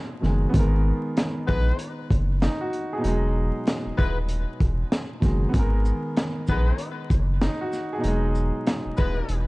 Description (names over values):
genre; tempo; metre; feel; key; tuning
hip hop, boom-bap hip-hop; 96 BPM; 4/4; swing 61% on 16ths; G# minor; A4 = 440 Hz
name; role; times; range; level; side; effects
warm grand piano; accompaniment; 0.0-9.5 s; B2 to A#4; -28 LUFS; right 1 dB; cassette tape, high-pass filter, low-pass filter
saturated sub bass; bass; 0.2-9.5 s; D#1 to A#1; -23 LUFS; equal; none
crunchy breakbeat drum kit; drums; 0.2-9.5 s; hi-hat, kick drum, shaker, snare drum; -25 LUFS; equal; none
mellow horn section; stabs; 1.5-9.4 s; G#3 to B4; -32 LUFS; left 3 dB; high-pass filter, low-pass filter, ping-pong delay
room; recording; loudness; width
small room ambience; dark, warm production, vinyl crackle, nothing above 10.4 kHz; -22 LUFS; side -23 dB against mid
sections
0.0-9.5 A section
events
break 0.0-0.5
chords
0.0 Emaj7 (rootless); 0.5 G#madd9; 3.0 Emaj7; 5.5 G#madd9; 8.0 Emaj7